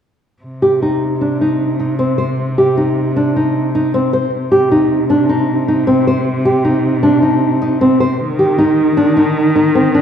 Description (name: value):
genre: contemporary instrumental, chamber music in an uneven meter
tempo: 155 BPM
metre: 5/4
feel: straight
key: C minor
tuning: A4 = 440 Hz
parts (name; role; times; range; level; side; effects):
- muted cello; bass; 0.4-10.0 s; C3 to Eb3; -18 LUFS; equal; none
- nylon-string guitar; arpeggios; 0.6-10.0 s; C4 to C5; -13 LUFS; equal; none
room: wet scoring stage reverb, RT60 1.5 s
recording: dark, warm production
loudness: -12 LUFS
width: side -8 dB against mid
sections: 0.4-4.3 A section; 4.3-10.0 B section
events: none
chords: 0.4 Cm; 8.2 Ebmaj7(no3)